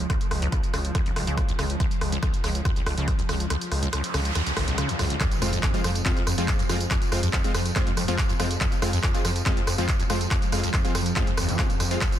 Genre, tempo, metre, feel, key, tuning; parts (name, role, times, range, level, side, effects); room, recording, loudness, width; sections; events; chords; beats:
driving peak-time techno; 141 BPM; 4/4; straight; F minor; A4 = 443 Hz
gritty driven synth bass; bass; 0.0-12.0 s; Ab1 to F2; -28 LUFS; equal; sidechain pumping
swarming drone; drone; 0.0-12.2 s; F3; -34 LUFS; right 2 dB; built-in reverb, sidechain pumping
punchy analog drum machine; drums; 0.0-12.2 s; handclaps, hi-hat, rim click, tambourine; -29 LUFS; right 1 dB; sidechain pumping on hats, sidechain pumping on perc
acid bass, saw; riff; 0.1-12.1 s; B1 to F3; -31 LUFS; equal; wide subtle chorus, sidechain pumping, ping-pong delay
electronic kick drum; drums; 0.1-12.1 s; -26 LUFS; equal
noise sweep and impact; sound effects; 3.9-6.9 s; -33 LUFS; right 1 dB
supersaw stab; stabs; 5.4-12.0 s; Ab3 to F4; -30 LUFS; left 1 dB; sidechain pumping, ping-pong delay
light reverb; dense, heavily limited modern master; -22 LUFS; side -11 dB against mid
0.0-5.2 A section; 5.2-12.2 B section
kick drops out 3.5-5.2; noise sweep 3.9-5.2; drop 5.2-12.2; impact 5.2-6.9
0.0 Db5; 5.2 Fm
| 0.10 0.52 0.95 1.38 | 1.80 2.23 2.65 3.08 | 3.50 3.93 4.35 4.78 | 5.21 5.63 6.06 6.48 | 6.91 7.33 7.76 8.18 | 8.61 9.03 9.46 9.89 | 10.31 10.74 11.16 11.59 | 12.01